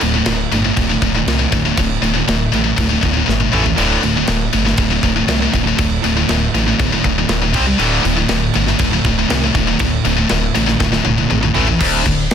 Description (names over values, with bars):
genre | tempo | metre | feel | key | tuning
heavy metal | 120 BPM | 4/4 | straight | unclear | A4 = 445 Hz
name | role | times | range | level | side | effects
heavy high-gain guitar | riff | 0.0-12.3 s | D2 to C4 | -17 LUFS | left 12 dB | distortion
high-gain distorted guitar | riff | 0.0-12.3 s | D2 to C4 | -19 LUFS | right 10 dB | distortion
chorused synth bass | bass | 0.0-12.3 s | D1 to C2 | -20 LUFS | equal | none
tight metal drum kit | drums | 0.0-12.3 s | crash cymbal, kick drum, snare drum, toms | -20 LUFS | right 1 dB | soft clipping on kick
room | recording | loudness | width
small room ambience | dense, heavily limited modern master | -13 LUFS | side -8 dB against mid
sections
0.0-11.8 A section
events
drum fill 3.3-3.8, 10.8-11.8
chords
0.0 D5; 3.5 A5; 3.8 D5; 7.5 C5; 7.8 D5; 11.6 A5; 11.8 N.C.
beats
0.26 0.77 1.27 | 1.77 2.27 2.77 3.28 | 3.78 4.28 4.78 5.29 | 5.79 6.29 6.79 7.29 | 7.79 8.30 8.80 9.30 | 9.80 10.30 10.80 11.31 | 11.81 12.31